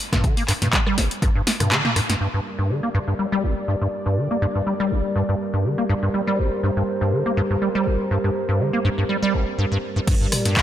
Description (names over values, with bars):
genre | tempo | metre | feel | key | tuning
acid house | 122 BPM | 4/4 | swing 54% on 16ths | G minor | A4 = 442 Hz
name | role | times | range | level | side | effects
acid bass, square | riff | 0.1-10.6 s | G1 to Bb3 | -22 LUFS | equal | ensemble chorus, ping-pong delay
electronic kick drum | drums | 0.1-1.3, 10.1-10.6 s | none | -21 LUFS | equal | overdrive
punchy analog drum machine | drums | 0.1-2.2, 10.1-10.6 s | crash cymbal, handclaps, hi-hat, rim click, snare drum, toms | -22 LUFS | equal | overdrive
dark analog pad | sustained chords | 2.2-10.6 s | G3 to D5 | -26 LUFS | equal | chorus, sidechain pumping
room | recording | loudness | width
moderate lush hall reverb, RT60 2.0 s | none | -19 LUFS | side -11 dB against mid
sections
0.0-2.2 A section; 2.2-10.1 B section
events
kick drops out 1.7-2.2; band accent 1.7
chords
0.0 N.C.; 2.2 Gm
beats
| 0.24 0.73 1.22 1.71 | 2.21 2.70 3.19 3.68 | 4.17 4.67 5.16 5.65 | 6.14 6.63 7.12 7.62 | 8.11 8.60 9.09 9.58 | 10.07 10.57